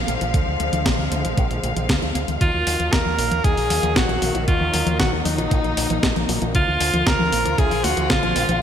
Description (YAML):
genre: italo disco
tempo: 116 BPM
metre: 4/4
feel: straight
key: Eb harmonic minor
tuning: A4 = 440 Hz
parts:
  - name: warm studio string section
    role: sustained chords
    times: 0.0-8.6 s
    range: D3 to F5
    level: -26 LUFS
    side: left 2 dB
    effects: none
  - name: fingered electric bass with an envelope filter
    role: bass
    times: 0.0-8.6 s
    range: Bb1 to Eb2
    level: -26 LUFS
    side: equal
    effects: none
  - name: wide unison pluck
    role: arpeggios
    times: 0.1-8.6 s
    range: D3 to Bb3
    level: -27 LUFS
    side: left 1 dB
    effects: cassette tape, digital delay
  - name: clean 12-bit digital drum machine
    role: drums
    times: 0.1-8.6 s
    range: hi-hat, snare drum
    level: -24 LUFS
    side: equal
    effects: gated reverb
  - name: electronic kick drum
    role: drums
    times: 0.3-8.2 s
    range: none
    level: -22 LUFS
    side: right 1 dB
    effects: none
  - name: edgy alto saxophone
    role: melody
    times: 2.4-8.6 s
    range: Eb4 to Bb4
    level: -22 LUFS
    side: equal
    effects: digital delay
room: moderate lush hall reverb, RT60 1.9 s, digital ambience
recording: bright 1980s-style digital production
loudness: -18 LUFS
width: side -9 dB against mid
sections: 0.0-8.6 A section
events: filter sweep on synth arpeggio sound 0.0-8.6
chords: 0.0 Bb; 2.4 Ebmadd9; 6.5 Bb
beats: | 0.34 0.86 1.38 1.89 | 2.41 2.93 3.44 3.96 | 4.48 5.00 5.51 6.03 | 6.55 7.07 7.58 8.10 | 8.62